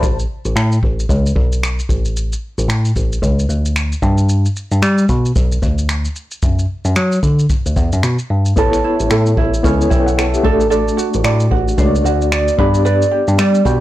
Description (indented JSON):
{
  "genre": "acoustic pop",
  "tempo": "112 BPM",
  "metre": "4/4",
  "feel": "swing 60% on 16ths",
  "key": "D major",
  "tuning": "A4 = 441 Hz",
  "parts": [
    { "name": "reed electric piano", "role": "accompaniment", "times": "0.0-0.2, 8.6-13.8 s", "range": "A3 to A5", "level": "-18 LUFS", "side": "left 3 dB", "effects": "fast tremolo" },
    { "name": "ukulele", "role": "accompaniment", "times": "0.0-0.1, 8.6-13.8 s", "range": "C#4 to D5", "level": "-18 LUFS", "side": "right 6 dB", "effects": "none" },
    { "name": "bell-like tine electric piano", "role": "bass", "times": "0.0-13.8 s", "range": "A1 to G3", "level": "-15 LUFS", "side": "equal", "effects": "none" },
    { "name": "vintage brush drum kit", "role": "drums", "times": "0.0-13.8 s", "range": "finger snaps, kick drum, shaker", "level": "-19 LUFS", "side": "equal", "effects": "soft clipping on snare" }
  ],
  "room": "light reverb",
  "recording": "blown-out, overdriven recording, overdrive",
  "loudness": "-13 LUFS",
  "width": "side -15 dB against mid",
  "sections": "0.0-13.8 A section",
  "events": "none",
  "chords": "0.0 Asus2; 1.9 D5/A; 4.0 G; 6.4 D/F#; 8.6 Aadd9; 10.4 D/A; 12.6 G"
}